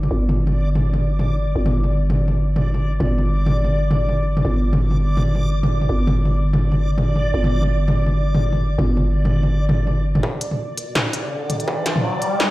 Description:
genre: half-time drum and bass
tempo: 166 BPM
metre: 4/4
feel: swing 56% on 16ths, half-time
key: unclear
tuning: A4 = 441 Hz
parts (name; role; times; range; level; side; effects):
- growling 808-style bass; bass; 0.0-10.2 s; G1; -18 LUFS; equal; none
- industrial drum kit; drums; 0.0-12.5 s; hi-hat, snare drum, toms; -22 LUFS; equal; none
- backwards swelling texture; texture; 0.0-12.5 s; D5; -28 LUFS; equal; built-in reverb
- electronic kick drum; drums; 10.2-11.8 s; none; -26 LUFS; equal; distortion, high-pass filter on kick, high-pass filter on room
- riser; sound effects; 10.8-12.5 s; none; -24 LUFS; equal; none
room: little or no reverb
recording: played on a big sound system in a bare room, large studio reverb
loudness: -17 LUFS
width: side -18 dB against mid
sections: 0.0-10.2 A section; 10.2-12.5 B section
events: build-up 10.2-12.5; riser 10.8-12.5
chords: 0.0 G5; 10.2 N.C.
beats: | 0.11 0.47 0.83 1.20 | 1.56 1.92 2.28 2.64 | 3.00 3.36 3.73 4.09 | 4.45 4.81 5.17 5.53 | 5.89 6.26 6.62 6.98 | 7.34 7.70 8.06 8.43 | 8.79 9.15 9.51 9.87 | 10.23 10.59 10.96 11.32 | 11.68 12.04 12.40

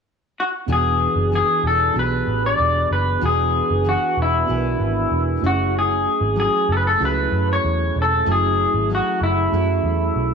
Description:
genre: indie pop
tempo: 95 BPM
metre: 4/4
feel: straight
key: unclear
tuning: A4 = 439 Hz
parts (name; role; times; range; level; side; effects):
- electric guitar through a small old amp; melody; 0.4-10.3 s; E4 to D5; -19 LUFS; left 2 dB; wide subtle chorus, slapback echo
- mellow tine electric piano; accompaniment; 0.7-10.3 s; A3 to B4; -27 LUFS; right 13 dB; medium stereo tremolo, cassette tape
- picked steel-string acoustic guitar; accompaniment; 0.7-10.3 s; E3 to A4; -28 LUFS; left 8 dB; wide subtle chorus, warbly pitch drift
- vintage muted picked electric bass; bass; 0.7-10.3 s; E1 to F#2; -22 LUFS; right 1 dB; none
room: moderate echo chamber reverb, RT60 1.9 s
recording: 1960s-style stereo with parts hard left and right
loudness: -17 LUFS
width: side -6 dB against mid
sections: 0.7-10.3 A section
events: none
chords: 0.0 N.C.; 0.7 E7; 5.4 F#m7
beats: 0.06 | 0.69 1.32 1.95 2.58 | 3.22 3.85 4.48 5.11 | 5.74 6.37 7.01 7.64 | 8.27 8.90 9.53 10.16

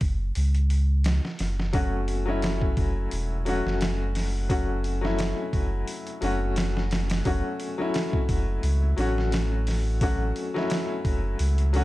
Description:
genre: trip hop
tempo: 87 BPM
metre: 4/4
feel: swing 55% on 16ths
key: F# minor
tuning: A4 = 440 Hz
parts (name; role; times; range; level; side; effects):
- warm sub bass; bass; 0.0-11.8 s; E1 to C#2; -25 LUFS; equal; none
- trip hop sampler-style drum kit; drums; 0.0-11.8 s; hi-hat, kick drum, snare drum; -28 LUFS; equal; overdrive
- bright upright piano; accompaniment; 1.7-11.8 s; F#3 to F#4; -28 LUFS; left 2 dB; tremolo, tape echo
room: little or no reverb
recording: dark, warm production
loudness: -23 LUFS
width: side -17 dB against mid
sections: 0.0-11.8 A section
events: none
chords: 0.0 F#m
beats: 0.36 1.05 | 1.74 2.43 3.12 3.81 | 4.50 5.19 5.88 6.57 | 7.25 7.94 8.63 9.32 | 10.01 10.70 11.39

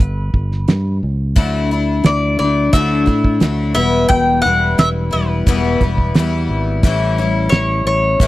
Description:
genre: folk rock and heartland rock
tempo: 88 BPM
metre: 4/4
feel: straight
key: unclear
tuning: A4 = 435 Hz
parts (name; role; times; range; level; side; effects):
- mandolin; melody; 0.0-8.3 s; B4 to G5; -18 LUFS; equal; none
- fingered electric bass; bass; 0.0-8.3 s; E1 to A2; -18 LUFS; equal; none
- damped 70s drum kit; drums; 0.0-8.3 s; hi-hat, kick drum, snare drum; -13 LUFS; right 1 dB; none
- picked twelve-string acoustic guitar; accompaniment; 1.4-8.3 s; E2 to E4; -18 LUFS; left 4 dB; none
room: little or no reverb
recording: dry, close 1970s-style studio recording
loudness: -13 LUFS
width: side -16 dB against mid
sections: 0.0-8.3 A section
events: none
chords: 0.0 G; 1.4 Dadd9; 3.8 Em; 6.8 A7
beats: 0.00 0.68 | 1.37 2.05 2.73 3.42 | 4.10 4.78 5.47 6.15 | 6.83 7.52 8.20

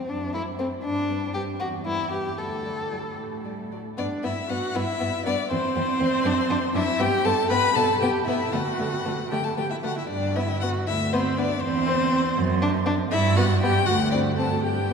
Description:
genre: quick classical-period movement for string quartet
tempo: 79 BPM (dotted quarters)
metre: 6/8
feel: rubato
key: G major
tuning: A4 = 440 Hz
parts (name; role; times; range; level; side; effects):
- warm violin; second line; 0.0-14.9 s; A3 to A4; -29 LUFS; left 2 dB; none
- warm cello; bass; 0.1-14.9 s; D2 to D3; -28 LUFS; right 3 dB; none
- warm violin; melody; 0.3-14.9 s; B4 to B5; -26 LUFS; left 6 dB; none
- warm viola; accompaniment; 0.3-14.9 s; F#3 to B4; -28 LUFS; right 3 dB; none
room: wet cathedral reverb, RT60 6.2 s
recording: recorded in a church or concert hall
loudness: -22 LUFS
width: side -6 dB against mid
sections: 0.0-4.0 A section; 4.0-14.9 A section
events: none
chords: 0.1 F#dim; 0.8 G; 1.6 Em; 2.4 D; 4.0 G; 5.5 C/E; 6.3 D7; 7.0 G; 7.8 Emadd11; 8.5 D; 10.1 G; 11.6 C/E; 12.4 D7/F#; 13.1 G; 13.9 D7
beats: 0.10 | 0.84 1.61 | 2.39 3.18 | 3.98 4.75 | 5.51 6.25 | 7.00 7.76 | 8.53 9.31 | 10.10 10.87 | 11.62 12.36 | 13.12 13.86 | 14.63

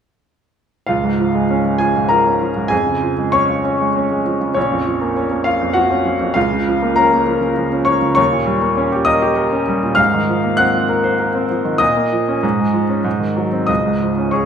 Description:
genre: classical, virtuoso piano study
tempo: 99 BPM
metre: 3/4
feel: rubato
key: Db major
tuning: A4 = 439 Hz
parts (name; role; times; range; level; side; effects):
- clear grand piano; solo; 0.9-14.5 s; Bb1 to Gb6; -14 LUFS; equal; none
room: moderate recital hall reverb, RT60 1.5 s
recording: minimal, uncompressed stereo recording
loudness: -14 LUFS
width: side -7 dB against mid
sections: 0.9-14.5 A section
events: none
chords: 0.9 Db; 2.7 Db/F; 4.6 Bbm; 6.4 Bbm/Db; 8.2 Eb7; 10.0 Ab13; 11.8 Bbm; 12.4 Db/Ab; 13.1 Ab7; 13.7 Db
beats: | 0.89 1.50 2.11 | 2.72 3.35 3.96 | 4.56 5.17 5.76 | 6.36 6.98 7.58 | 8.18 8.79 9.39 | 9.98 10.59 11.20 | 11.81 12.43 13.05 | 13.69 14.34

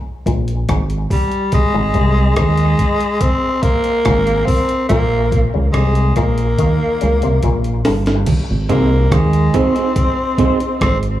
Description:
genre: dub reggae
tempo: 71 BPM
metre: 4/4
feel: straight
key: unclear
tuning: A4 = 440 Hz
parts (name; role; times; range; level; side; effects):
- auto-wah clav; riff; 0.3-8.1 s; G2 to Eb3; -25 LUFS; left 8 dB; overdrive, dub echo
- deep dub fingered electric bass; bass; 0.3-11.2 s; G1 to Eb2; -16 LUFS; equal; none
- breakbeat sampler-style drum kit; drums; 0.3-11.2 s; crash cymbal, hi-hat, kick drum, rim click, snare drum; -18 LUFS; equal; none
- raspy tenor saxophone; melody; 1.1-11.0 s; G3 to C4; -18 LUFS; equal; dub echo
- congas; percussion; 8.3-8.5 s; none; -21 LUFS; right 6 dB; dub echo
- electric guitar through a small old amp; accompaniment; 8.7-10.6 s; C4 to C5; -18 LUFS; right 4 dB; ensemble chorus, dub echo
room: light reverb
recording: echo-heavy mix, small room reverb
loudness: -13 LUFS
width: side -13 dB against mid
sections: 0.0-8.3 A section; 8.3-11.2 B section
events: break 0.0-8.3; drum fill 6.6-8.3; part muted 8.3-11.2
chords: 0.0 Abmaj7sus2; 1.5 Ab; 4.9 Bbm; 6.6 Eb; 8.3 Ab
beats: 0.68 | 1.53 2.37 3.21 4.06 | 4.90 5.74 6.59 7.43 | 8.27 9.11 9.96 10.80

